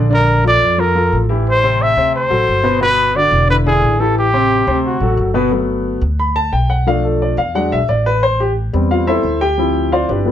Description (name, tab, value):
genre	Afro-Cuban jazz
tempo	177 BPM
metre	4/4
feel	straight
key	G major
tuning	A4 = 442 Hz
part	warm grand piano	accompaniment	0.0-10.3 s	B2 to B5	-16 LUFS	left 2 dB	none
part	upright bass	bass	0.0-10.3 s	E1 to F2	-18 LUFS	equal	none
part	mellow trumpet	melody	0.1-5.3 s	F#4 to E5	-14 LUFS	equal	none
room	light reverb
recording	none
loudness	-12 LUFS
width	side -10 dB against mid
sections	0.0-5.5 A section; 5.5-10.3 B section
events	grand piano solo 5.5-10.3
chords	0.1 Bbmaj7; 1.5 Am7; 2.1 D7; 2.8 Gmaj7; 3.5 E7; 4.2 Am7; 4.8 D7; 5.5 Gmaj7; 6.9 Bm7b5; 7.5 E7; 8.2 Am7; 9.6 Dm7